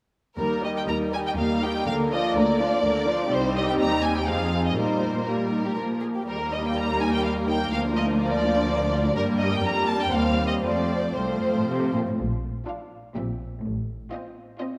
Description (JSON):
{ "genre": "quick classical-period movement for string orchestra", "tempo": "123 BPM", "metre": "3/4", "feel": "rubato", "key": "Eb major, Bb major from 9.2 s", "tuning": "A4 = 438 Hz", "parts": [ { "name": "rich studio violin section", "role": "melody", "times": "0.4-14.8 s", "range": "Bb4 to Bb5", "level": "-30 LUFS", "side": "equal", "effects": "none" }, { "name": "dark studio violin section", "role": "second line", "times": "0.4-14.8 s", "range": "G3 to Eb5", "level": "-31 LUFS", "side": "equal", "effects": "none" }, { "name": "warm studio viola section", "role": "accompaniment", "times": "0.4-14.8 s", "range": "D3 to D4", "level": "-30 LUFS", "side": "equal", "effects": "none" }, { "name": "rich studio cello section", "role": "bass", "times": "0.4-14.0 s", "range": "C2 to C3", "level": "-31 LUFS", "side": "equal", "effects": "none" }, { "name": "rich studio double bass section", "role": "bass", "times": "12.2-14.0 s", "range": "A1 to Bb1", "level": "-34 LUFS", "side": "equal", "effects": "none" } ], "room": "wet concert hall reverb, RT60 1.9 s", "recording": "none", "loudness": "-24 LUFS", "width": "mono", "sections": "0.4-12.2 A section; 12.2-14.8 B section", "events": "none", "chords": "0.4 Eb; 1.9 Bb/D; 3.3 Cm; 4.3 Fm7; 4.8 Eb/Bb; 5.8 Bb5; 6.3 Eb; 7.7 Bb/D; 9.2 Gm; 10.1 Cm7/Eb; 10.6 F; 12.2 Bb; 13.2 C7/Bb; 13.6 F7/A" }